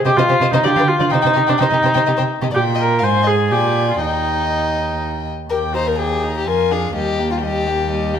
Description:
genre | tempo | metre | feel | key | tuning
quick classical-period movement for string quartet | 126 BPM | 3/4 | rubato | Eb major | A4 = 440 Hz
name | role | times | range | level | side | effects
warm violin | melody | 0.0-8.2 s | C5 to Bb5 | -23 LUFS | left 10 dB | none
rich violin | second line | 0.1-8.1 s | F4 to F5 | -22 LUFS | left 5 dB | none
rich viola | accompaniment | 0.1-8.2 s | G3 to C5 | -18 LUFS | right 1 dB | none
warm cello | bass | 0.1-8.2 s | Eb2 to D3 | -20 LUFS | right 4 dB | none
room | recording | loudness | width
moderate recital hall reverb, RT60 1.4 s | none | -15 LUFS | side -8 dB against mid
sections
0.0-5.5 A section; 5.5-8.2 A section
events
none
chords
0.0 Cm; 0.6 Bdim/D (rootless); 1.1 Cm; 2.5 Gm/Bb; 3.0 Fm/Ab (rootless); 3.5 Bb6; 4.0 Eb; 6.5 Ddim/F; 7.0 Eb

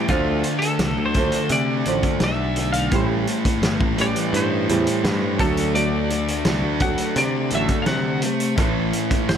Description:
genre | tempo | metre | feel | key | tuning
quiet-loud alternative rock | 85 BPM | 4/4 | straight | unclear | A4 = 445 Hz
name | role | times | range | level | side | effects
twelve-string electric guitar | melody | 0.0-9.4 s | F4 to F#5 | -26 LUFS | left 1 dB | lush chorus, analog delay
fingerpicked steel-string acoustic guitar | arpeggios | 0.0-8.6 s | A2 to A3 | -27 LUFS | right 6 dB | none
fuzz guitar | riff | 0.0-9.4 s | A2 to D4 | -26 LUFS | right 12 dB | distortion
thick fuzz guitar | riff | 0.0-9.4 s | A2 to D4 | -25 LUFS | left 14 dB | distortion
modern bright picked electric bass | bass | 0.0-9.4 s | G1 to C3 | -25 LUFS | equal | none
loose indie drum kit | drums | 0.1-9.4 s | hi-hat, kick drum, snare drum | -24 LUFS | equal | none
room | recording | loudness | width
studio reverb | none | -18 LUFS | side -8 dB against mid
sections
0.0-9.4 A section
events
clean electric guitar solo 0.0-9.4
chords
0.1 Dm; 2.9 Am7; 5.4 D; 8.6 A5

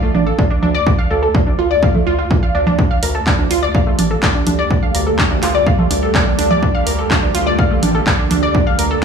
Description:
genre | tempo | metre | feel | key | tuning
melodic techno | 125 BPM | 4/4 | straight | unclear | A4 = 440 Hz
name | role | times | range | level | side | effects
analog pluck | arpeggios | 0.0-9.0 s | A3 to F5 | -17 LUFS | right 1 dB | chorus, sidechain pumping, dub echo
round analog bass | bass | 0.1-9.0 s | A1 to D2 | -20 LUFS | equal | tube saturation, sidechain pumping
punchy analog drum machine | drums | 0.1-8.9 s | congas, handclaps, hi-hat | -19 LUFS | right 2 dB | sidechain pumping on perc, sidechain pumping on hats
electronic kick drum | drums | 0.4-8.6 s | none | -16 LUFS | equal | none
evolving wavetable pad | sustained chords | 3.2-9.0 s | D3 to G4 | -22 LUFS | equal | chorus, built-in reverb, sidechain pumping
room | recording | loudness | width
light reverb | studio ambience | -12 LUFS | side -6 dB against mid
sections
0.0-9.0 A section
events
none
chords
0.0 Dm; 2.8 Gmadd9

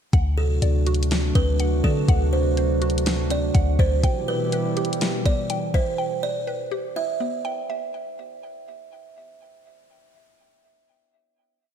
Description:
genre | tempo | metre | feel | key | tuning
hip hop, atmospheric cloud-rap | 123 BPM | 4/4 | half-time | E minor | A4 = 437 Hz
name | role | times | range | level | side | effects
warbly tape-like pad | sustained chords | 0.1-6.0 s | B2 to G4 | -27 LUFS | right 1 dB | chorus, built-in reverb, sidechain pumping
mallet-like synth pluck | arpeggios | 0.1-7.9 s | B3 to G5 | -32 LUFS | equal | chorus, phaser, ping-pong delay
clean 808-style bass | bass | 0.1-4.0 s | D2 to D3 | -21 LUFS | left 1 dB | none
smooth R&B drum kit | drums | 0.1-5.9 s | hi-hat, kick drum, snare drum | -22 LUFS | left 1 dB | vintage 12-bit sampler grit, gated reverb
buzzing kalimba | melody | 0.4-7.9 s | A4 to E5 | -28 LUFS | right 5 dB | ping-pong delay
room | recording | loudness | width
light reverb | bright 1980s-style digital production | -20 LUFS | side -8 dB against mid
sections
0.1-7.9 verse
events
none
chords
0.1 D7; 4.0 Em

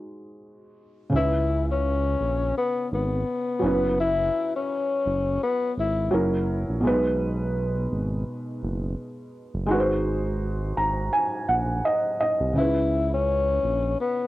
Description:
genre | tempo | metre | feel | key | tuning
lo-fi hip hop | 84 BPM | 4/4 | swing 56% on 16ths | C# dorian | A4 = 440 Hz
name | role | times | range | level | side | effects
felt-muted upright piano | accompaniment | 0.0-14.3 s | B2 to A#5 | -26 LUFS | right 1 dB | cassette tape, low-pass filter
smooth synth bass | bass | 1.1-14.0 s | F#1 to C#2 | -27 LUFS | right 1 dB | none
breathy tenor saxophone | melody | 1.2-6.1, 12.6-14.3 s | B3 to E4 | -25 LUFS | left 4 dB | low-pass filter, cassette tape
room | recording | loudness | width
moderate studio reverb, RT60 0.6 s | home recording on cassette, low-pass filter | -22 LUFS | side -16 dB against mid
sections
0.0-1.1 A section; 1.1-14.3 B section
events
filter sweep 0.0-1.1; felt piano fill 10.4-12.6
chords
0.0 G#7; 1.1 C#m7; 3.6 F#7sus4; 6.1 F#7; 6.8 B6; 9.7 G#7; 12.6 C#m7

